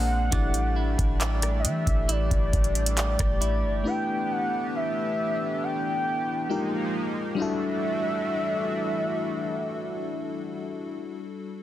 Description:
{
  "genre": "contemporary R&B",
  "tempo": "68 BPM",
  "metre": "4/4",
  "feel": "straight",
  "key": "E minor",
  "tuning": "A4 = 435 Hz",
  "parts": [
    { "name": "gliding portamento lead", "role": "melody", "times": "0.0-11.0 s", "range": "D5 to G5", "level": "-30 LUFS", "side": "equal", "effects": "chorus, digital delay" },
    { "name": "FM electric piano with soft pad layer", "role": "accompaniment", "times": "0.0-11.6 s", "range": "E#3 to D5", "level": "-32 LUFS", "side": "left 5 dB", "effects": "chorus, tremolo" },
    { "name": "chorused pulse-width pad", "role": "sustained chords", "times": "0.0-11.0 s", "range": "D3 to G4", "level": "-33 LUFS", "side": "right 2 dB", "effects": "none" },
    { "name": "direct-recorded clean electric guitar", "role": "arpeggios", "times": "0.0-4.4 s", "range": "A3 to D5", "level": "-36 LUFS", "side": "right 6 dB", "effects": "digital delay" },
    { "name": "clean 808-style bass", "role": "bass", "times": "0.0-3.8 s", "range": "G1 to E3", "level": "-26 LUFS", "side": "equal", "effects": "none" },
    { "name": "booming analog drum machine", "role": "drums", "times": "0.3-3.6 s", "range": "handclaps, hi-hat, kick drum, rim click", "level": "-26 LUFS", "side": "equal", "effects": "none" }
  ],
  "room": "little or no reverb",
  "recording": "dense, heavily limited modern master",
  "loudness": "-24 LUFS",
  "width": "side -13 dB against mid",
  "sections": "0.0-7.4 A section; 7.4-10.9 B section",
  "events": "none",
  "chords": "0.3 A7sus4; 3.9 G69; 6.5 Fm11; 7.4 Em11"
}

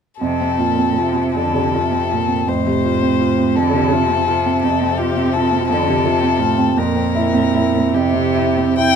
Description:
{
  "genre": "classical, slow romantic movement for piano quartet",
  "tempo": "47-57 BPM (dotted quarters)",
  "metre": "6/8",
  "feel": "rubato",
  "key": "F major",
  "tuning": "A4 = 440 Hz",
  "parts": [
    { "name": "rich violin", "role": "melody", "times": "0.2-9.0 s", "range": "G4 to G5", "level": "-20 LUFS", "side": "left 8 dB", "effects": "none" },
    { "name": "warm cello", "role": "second line", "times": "0.2-9.0 s", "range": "A2 to D3", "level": "-21 LUFS", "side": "right 4 dB", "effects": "none" },
    { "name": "clear concert grand piano", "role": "accompaniment", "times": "0.2-9.0 s", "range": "F2 to F4", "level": "-17 LUFS", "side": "right 2 dB", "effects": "none" }
  ],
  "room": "light reverb",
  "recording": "minimal, uncompressed stereo recording",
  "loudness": "-14 LUFS",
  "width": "side -7 dB against mid",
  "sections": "0.2-9.0 A section",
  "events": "none",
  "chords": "0.2 F; 6.8 C7/F"
}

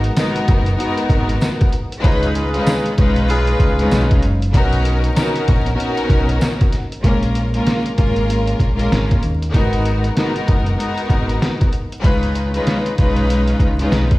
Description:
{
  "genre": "hip hop, boom-bap hip-hop",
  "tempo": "96 BPM",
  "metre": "4/4",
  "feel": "swing 61% on 16ths",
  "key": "G# dorian",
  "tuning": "A4 = 442 Hz",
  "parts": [
    { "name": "clear symphonic string section", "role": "accompaniment", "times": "0.0-14.2 s", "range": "G#3 to B4", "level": "-19 LUFS", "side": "left 1 dB", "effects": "high-pass filter, low-pass filter" },
    { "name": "deep dub fingered electric bass", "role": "bass", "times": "0.0-14.2 s", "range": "F#1 to D#2", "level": "-19 LUFS", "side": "equal", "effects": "none" },
    { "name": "trip hop sampler-style drum kit", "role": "drums", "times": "0.0-14.2 s", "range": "hi-hat, kick drum, snare drum", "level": "-17 LUFS", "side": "equal", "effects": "none" },
    { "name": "tambourine", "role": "percussion", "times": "0.2-6.6 s", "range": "none", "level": "-37 LUFS", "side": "right 4 dB", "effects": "none" },
    { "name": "warm horn section", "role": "stabs", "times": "2.2-4.1 s", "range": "D#4 to B4", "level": "-24 LUFS", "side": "equal", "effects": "high-pass filter, low-pass filter, ping-pong delay" }
  ],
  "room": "light reverb",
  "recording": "played on a big sound system in a bare room, stone room reverb, vinyl crackle",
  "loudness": "-14 LUFS",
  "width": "side -19 dB against mid",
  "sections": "0.0-7.0 A section; 7.0-14.2 B section",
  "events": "none",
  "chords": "0.0 G#m7; 2.0 C#9; 4.5 Bmaj7; 7.0 A#m7; 9.5 G#m7; 12.0 C#9"
}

